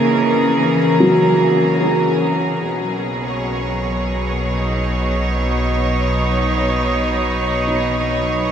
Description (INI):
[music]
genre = ambient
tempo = 74 BPM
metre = 4/4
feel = straight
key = B major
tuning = A4 = 440 Hz
[part]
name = rich chamber string section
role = sustained chords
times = 0.0-8.5 s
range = B2 to C#5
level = -18 LUFS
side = equal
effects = none
[part]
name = felt-muted upright piano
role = arpeggios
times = 0.0-8.5 s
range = F#3 to D#5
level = -21 LUFS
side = right 1 dB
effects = diffuse ambient delay
[part]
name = glass harmonica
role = texture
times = 0.0-8.5 s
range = B3 to B5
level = -24 LUFS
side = left 1 dB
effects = none
[part]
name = round analog bass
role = bass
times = 2.6-8.5 s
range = B1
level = -24 LUFS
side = equal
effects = none
[sound]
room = wet shimmer reverb, RT60 8.6 s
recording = none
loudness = -15 LUFS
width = side -8 dB against mid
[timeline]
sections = 0.0-2.6 A section; 2.6-8.5 B section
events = fade-in on glass harmonica 2.6-8.5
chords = 0.0 C#m; 2.6 Badd9